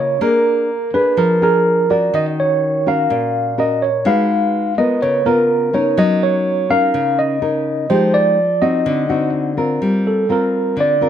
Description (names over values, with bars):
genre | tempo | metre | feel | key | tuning
bossa nova | 125 BPM | 4/4 | straight | Eb minor | A4 = 440 Hz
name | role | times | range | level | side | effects
tine electric piano | melody | 0.0-11.1 s | A4 to F5 | -16 LUFS | right 1 dB | medium stereo tremolo, plate reverb
nylon-string guitar | accompaniment | 0.0-11.1 s | Bb2 to Cb5 | -17 LUFS | left 2 dB | none
room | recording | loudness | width
moderate studio reverb, RT60 0.6 s | none | -14 LUFS | side -9 dB against mid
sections
0.0-9.8 A section; 9.8-11.1 B section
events
tine electric piano solo 9.8-11.1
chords
0.2 Bb7b9; 2.1 Ebm7; 4.0 Abm7; 5.0 Db13; 6.0 Gb6; 7.9 Fm9; 8.8 D7b9; 9.8 Gm7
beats
| 0.21 0.69 1.17 1.65 | 2.13 2.61 3.09 3.57 | 4.05 4.53 5.01 5.49 | 5.97 6.45 6.93 7.41 | 7.89 8.37 8.85 9.32 | 9.80 10.28 10.76